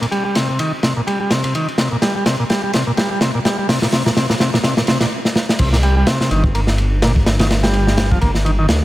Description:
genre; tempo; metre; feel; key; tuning
breakbeat, breaks; 126 BPM; 4/4; swing 56% on 16ths; C minor; A4 = 444 Hz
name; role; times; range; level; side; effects
combo organ; riff; 0.0-8.7 s; Bb2 to Bb3; -19 LUFS; equal; tube saturation, vintage 12-bit sampler grit, tape echo
crunchy breakbeat drum kit; drums; 0.0-8.8 s; crash cymbal, hi-hat, kick drum, ride cymbal, snare drum; -17 LUFS; equal; none
detuned saw bass; bass; 5.6-8.8 s; G1 to D2; -16 LUFS; equal; none
room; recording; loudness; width
light reverb, studio ambience; none; -14 LUFS; side -16 dB against mid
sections
0.0-5.6 A section; 5.6-8.8 B section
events
build-up 0.0-5.6; drum fill 0.0-5.1, 5.2-5.6; stop 5.1-5.6; drop 5.6-8.8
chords
0.0 C5; 5.6 Cm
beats
0.36 0.83 1.31 | 1.78 2.26 2.74 3.21 | 3.69 4.17 4.64 5.12 | 5.59 6.07 6.55 7.02 | 7.50 7.98 8.45

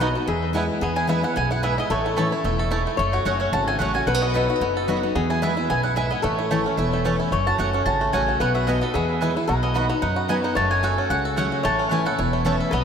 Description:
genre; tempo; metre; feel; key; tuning
bluegrass; 222 BPM; 4/4; swing 54% on 8ths; E major; A4 = 440 Hz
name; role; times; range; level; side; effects
mandolin; melody; 0.0-12.8 s; C#5 to A5; -27 LUFS; right 1 dB; ping-pong delay
lap resonator guitar; second line; 0.0-12.8 s; G#4 to C#5; -28 LUFS; left 4 dB; none
picked steel-string acoustic guitar; accompaniment; 0.0-12.8 s; E2 to F#4; -26 LUFS; left 2 dB; none
bluegrass banjo; arpeggios; 0.0-12.8 s; A3 to A4; -27 LUFS; right 2 dB; ping-pong delay
mandolin; stabs; 0.0-12.6 s; A3 to B5; -31 LUFS; right 4 dB; ping-pong delay
upright bass; bass; 0.0-12.8 s; E1 to F#2; -27 LUFS; equal; none
room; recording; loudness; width
wet lush hall reverb, RT60 2.4 s; dreamy mix soaked in reverb; -20 LUFS; side -7 dB against mid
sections
0.8-9.5 A section; 9.5-12.8 B section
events
none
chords
0.3 E; 1.9 A; 3.0 F#m; 4.1 B; 5.2 E; 6.2 A; 7.3 F#m; 8.4 B; 8.9 E; 9.5 B; 10.6 F#m; 11.6 A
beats
0.01 0.28 0.55 | 0.82 1.09 1.36 1.63 | 1.91 2.17 2.45 2.72 | 2.99 3.26 3.53 3.80 | 4.07 4.34 4.61 4.88 | 5.15 5.42 5.70 5.97 | 6.24 6.51 6.78 7.05 | 7.32 7.59 7.86 8.13 | 8.40 8.67 8.94 9.21 | 9.48 9.76 10.03 10.30 | 10.57 10.84 11.11 11.38 | 11.65 11.92 12.19 12.46 | 12.73

